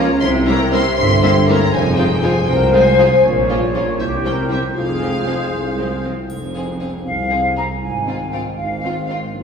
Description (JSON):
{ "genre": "cinematic, playful, whimsical film cue", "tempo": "79 BPM (dotted quarters)", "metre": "6/8", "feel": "straight", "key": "F minor", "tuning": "A4 = 440 Hz", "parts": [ { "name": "folk marimba with soft mallets", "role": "melody", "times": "0.0-6.0 s", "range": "E4 to C5", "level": "-25 LUFS", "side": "left 3 dB", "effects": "none" }, { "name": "rich studio violin section", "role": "melody", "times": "0.0-9.2 s", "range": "E5 to C6", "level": "-25 LUFS", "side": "left 2 dB", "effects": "none" }, { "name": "bright large flute ensemble", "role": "second line", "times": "0.0-9.3 s", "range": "G4 to Bb5", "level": "-22 LUFS", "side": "left 1 dB", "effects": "none" }, { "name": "mellow clarinet", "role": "second line", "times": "0.0-6.0 s", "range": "F4 to Bb4", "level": "-29 LUFS", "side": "left 1 dB", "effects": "none" }, { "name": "rich studio violin section", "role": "second line", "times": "0.0-9.2 s", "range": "C4 to Ab4", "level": "-27 LUFS", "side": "left 2 dB", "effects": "none" }, { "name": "warm oboe", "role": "second line", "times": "0.0-6.0 s", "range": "C5 to E5", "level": "-28 LUFS", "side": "right 2 dB", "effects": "none" }, { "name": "warm studio viola section", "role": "accompaniment", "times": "0.0-9.2 s", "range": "F3 to C4", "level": "-27 LUFS", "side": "right 2 dB", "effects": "none" }, { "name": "clear French horn section", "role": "sustained chords", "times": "0.0-9.4 s", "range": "C4 to C5", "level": "-22 LUFS", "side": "left 4 dB", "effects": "none" }, { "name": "clear studio cello section", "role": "bass", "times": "0.0-9.4 s", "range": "C2 to C3", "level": "-23 LUFS", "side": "right 2 dB", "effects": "none" }, { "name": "rich studio double bass section", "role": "bass", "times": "0.0-9.4 s", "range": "F1 to Db2", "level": "-24 LUFS", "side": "right 2 dB", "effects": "none" }, { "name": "warm tuba", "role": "bass", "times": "0.0-9.4 s", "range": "F1 to C2", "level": "-22 LUFS", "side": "equal", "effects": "none" }, { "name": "triangle", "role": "percussion", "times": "6.3-7.3 s", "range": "none", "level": "-44 LUFS", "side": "right 3 dB", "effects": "none" } ], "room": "wet concert hall reverb, RT60 2.3 s", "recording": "heard from further back in the room, small room ambience", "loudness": "-14 LUFS", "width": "side -6 dB against mid", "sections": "0.0-6.3 A section; 6.3-9.4 B section", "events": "none", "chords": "0.2 C7; 1.7 Fm; 3.2 Bbm; 4.0 C5; 4.8 Fm; 7.8 Fm/Ab" }